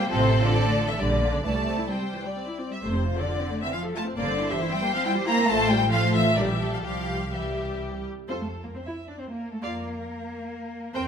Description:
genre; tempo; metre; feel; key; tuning
quick classical-period movement for string orchestra; 122-141 BPM; 3/4; rubato; F major; A4 = 440 Hz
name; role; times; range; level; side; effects
clear studio violin section; melody; 0.0-11.1 s; G4 to G5; -33 LUFS; left 2 dB; none
rich studio violin section; second line; 0.0-11.1 s; A4 to Bb5; -29 LUFS; left 2 dB; none
rich studio viola section; accompaniment; 0.0-11.1 s; D3 to D5; -29 LUFS; left 2 dB; none
warm chamber cello section; bass; 0.0-11.0 s; C3 to E4; -30 LUFS; right 2 dB; none
rich studio double bass section; bass; 0.1-11.1 s; F1 to F2; -29 LUFS; right 2 dB; none
room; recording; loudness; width
light reverb; close, detailed microphones; -23 LUFS; side -7 dB against mid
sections
0.0-8.3 A section; 8.3-11.1 B section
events
none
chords
0.1 F/A; 1.0 Gm/Bb; 1.4 C; 2.8 F; 4.2 C7/G; 5.5 F/A; 6.4 Gm7/Bb; 6.8 C; 8.3 F; 9.6 Bb/F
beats
| 0.10 0.54 0.99 | 1.44 1.89 2.35 | 2.82 3.27 3.72 | 4.17 4.61 5.04 | 5.48 5.91 6.36 | 6.84 7.33 7.81 | 8.29 8.74 9.18 | 9.63 10.07 10.50 | 10.94

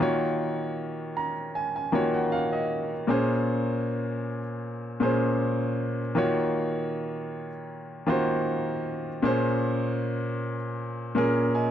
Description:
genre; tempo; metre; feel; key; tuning
R&B; 78 BPM; 4/4; swing 54% on 16ths; Bb minor; A4 = 445 Hz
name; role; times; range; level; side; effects
clear baby grand piano; solo; 0.0-11.7 s; Bb2 to Bb5; -25 LUFS; equal; none
room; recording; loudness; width
moderate booth ambience, RT60 0.2 s; dark, warm production; -25 LUFS; side -10 dB against mid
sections
0.0-11.7 A section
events
grand piano fill 0.8-3.1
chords
0.0 Ebm9; 3.1 Bbm9; 6.2 Ebm9; 9.2 Bbm9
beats
| 0.00 0.77 1.54 2.31 | 3.08 3.85 4.62 5.39 | 6.16 6.93 7.70 8.46 | 9.23 10.00 10.77 11.54

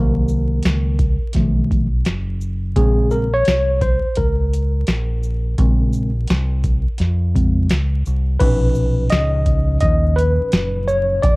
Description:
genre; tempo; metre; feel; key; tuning
hip hop, jazz-hop; 85 BPM; 4/4; swing 64% on 16ths; Bb minor; A4 = 437 Hz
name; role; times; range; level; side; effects
tine electric piano; accompaniment; 0.0-11.4 s; A#2 to D#5; -20 LUFS; equal; overdrive, fast stereo tremolo, cassette tape
deep dub fingered electric bass; bass; 0.0-11.4 s; F1 to F2; -19 LUFS; equal; none
booming analog drum machine; drums; 0.3-11.4 s; crash cymbal, hi-hat, kick drum, shaker, snare drum; -19 LUFS; equal; cassette tape
room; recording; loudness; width
little or no reverb; home recording on cassette, vinyl crackle; -15 LUFS; side -24 dB against mid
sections
0.0-8.4 A section; 8.4-11.4 B section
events
tine electric piano solo 0.0-8.4, 8.4-11.4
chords
0.0 Cm7b5; 1.4 B7#11; 2.8 Bbm9; 8.4 Bmaj9#11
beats
0.64 1.35 2.06 | 2.76 3.47 4.17 4.88 | 5.59 6.29 7.00 7.70 | 8.41 9.12 9.82 10.53 | 11.23

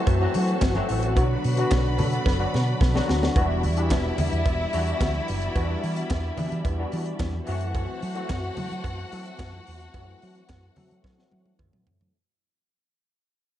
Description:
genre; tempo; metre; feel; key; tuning
disco; 109 BPM; 4/4; straight; E minor; A4 = 440 Hz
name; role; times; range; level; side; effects
rich studio string section; second line; 0.0, 3.4-11.6 s; E4 to F#5; -34 LUFS; left 1 dB; none
bell-like tine electric piano; accompaniment; 0.0-12.2 s; D3 to A4; -28 LUFS; left 2 dB; ensemble chorus, low-pass filter
clear studio string section; sustained chords; 0.0-12.1 s; G3 to B5; -35 LUFS; right 1 dB; low-pass filter
hollow-body short-scale fingered electric bass; bass; 0.1-12.1 s; E1 to F#3; -27 LUFS; equal; none
tight funk drum kit; drums; 0.1-12.1 s; handclaps, hi-hat, kick drum, snare drum, toms; -26 LUFS; equal; none
congas; percussion; 0.1-11.9 s; none; -34 LUFS; left 3 dB; none
cowbell; percussion; 0.1-11.7 s; none; -38 LUFS; right 16 dB; none
room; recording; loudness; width
studio ambience; dark, warm production, nothing above 10.6 kHz; -22 LUFS; side -12 dB against mid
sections
0.0-3.4 A section; 3.4-12.1 B section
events
drum fill 2.3-3.4, 11.0-12.1; fade-out 3.4-12.1; filter sweep 3.4-12.1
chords
0.0 F#m7b5; 1.2 Bm; 3.4 Em7; 7.5 F#m7b5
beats
0.07 0.62 | 1.17 1.71 2.26 2.81 | 3.36 3.90 4.45 5.00 | 5.55 6.10 6.65 7.20 | 7.75 8.29 8.85 9.39 | 9.94 10.49 11.04 11.59

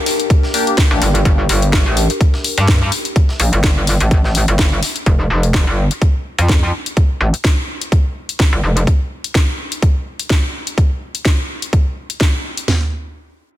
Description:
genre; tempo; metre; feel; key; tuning
bass house; 126 BPM; 4/4; swing 55% on 16ths; G minor; A4 = 438 Hz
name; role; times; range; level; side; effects
downlifter; sound effects; 0.0-1.3 s; none; -46 LUFS; left 1 dB; none
warbly tape-like pad; texture; 0.0-5.1 s; D4 to G5; -23 LUFS; left 2 dB; chorus, built-in reverb, sidechain pumping
breakbeat sampler-style drum kit; drums; 0.1-5.0 s; hi-hat, snare drum; -30 LUFS; left 1 dB; none
house drum kit; drums; 0.1-12.7 s; hi-hat, snare drum; -20 LUFS; left 2 dB; overdrive, studio reverb
garage drum kit; drums; 0.3-12.8 s; hi-hat, kick drum, snare drum, toms; -14 LUFS; equal; studio reverb
band-passed chord stab; stabs; 0.5-1.0 s; Bb3 to G4; -22 LUFS; left 3 dB; phaser, sidechain pumping, tape echo
metallic wobble bass; bass; 0.9-8.9 s; F1 to G2; -14 LUFS; equal; chorus, overdrive, sidechain pumping
room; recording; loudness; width
digital ambience; dense, heavily limited modern master; -13 LUFS; side -14 dB against mid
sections
0.0-12.7 A section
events
fade-out on ambient pad 0.0-5.1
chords
0.0 Gm; 5.1 N.C.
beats
0.30 0.78 | 1.25 1.73 2.21 2.68 | 3.16 3.63 4.11 4.59 | 5.06 5.54 6.01 6.49 | 6.97 7.44 7.92 8.40 | 8.87 9.35 9.82 10.30 | 10.78 11.25 11.73 12.21 | 12.68

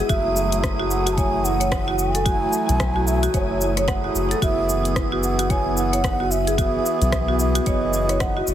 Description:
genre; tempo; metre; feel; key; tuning
organic downtempo; 111 BPM; 4/4; swing 60% on 16ths; F# dorian; A4 = 440 Hz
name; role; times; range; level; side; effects
warbly tape-like pad; sustained chords; 0.0-8.5 s; E3 to F#4; -30 LUFS; left 2 dB; chorus, built-in reverb, vintage 12-bit sampler grit, sidechain pumping
marimba with hard mallets; arpeggios; 0.0-8.5 s; F#4 to F#5; -26 LUFS; equal; ping-pong delay
wind-like tuned noise texture; texture; 0.0-8.5 s; E4 to D#6; -32 LUFS; right 3 dB; built-in reverb
mellow hollow bass bansuri; melody; 0.1-8.5 s; C#5 to A5; -25 LUFS; right 1 dB; ping-pong delay
hand-pumped harmonium; accompaniment; 0.1-8.4 s; E3 to G#5; -27 LUFS; right 3 dB; sidechain pumping, ping-pong delay
round analog bass; bass; 0.1-8.5 s; F#1 to B1; -25 LUFS; equal; sidechain pumping
afro-pop drum kit; drums; 0.1-8.5 s; hi-hat, rim click, shaker; -29 LUFS; left 1 dB; none
electronic kick drum; drums; 0.1-8.3 s; none; -26 LUFS; equal; none
room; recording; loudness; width
light reverb, digital ambience; heavily compressed radio sound, multiband compression; -18 LUFS; side -11 dB against mid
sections
0.0-8.5 A section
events
none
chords
0.1 F#m9; 4.4 Emaj7/F#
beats
| 0.10 0.64 1.18 1.72 | 2.26 2.80 3.34 3.88 | 4.42 4.96 5.50 6.04 | 6.58 7.12 7.66 8.21

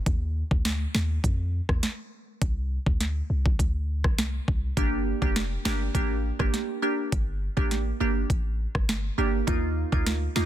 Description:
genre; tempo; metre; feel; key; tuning
dancehall; 102 BPM; 4/4; straight; G minor; A4 = 440 Hz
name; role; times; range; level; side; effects
warm 808-style bass; bass; 0.1-10.5 s; F1 to F2; -28 LUFS; equal; none
island pop drum kit; drums; 0.1-10.5 s; hi-hat, kick drum, rim click, snare drum; -26 LUFS; equal; overdrive
glassy wavetable pluck; accompaniment; 4.8-10.5 s; Bb3 to G4; -28 LUFS; right 3 dB; chorus, sidechain pumping
room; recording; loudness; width
little or no reverb; dense, heavily limited modern master; -24 LUFS; side -12 dB against mid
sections
0.0-10.5 A section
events
none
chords
0.1 Ebsus2; 2.4 Csus2; 4.8 Gm; 9.5 Ebsus2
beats
| 0.06 0.65 1.24 1.83 | 2.42 3.01 3.59 4.18 | 4.77 5.36 5.95 6.54 | 7.12 7.71 8.30 8.89 | 9.48 10.06

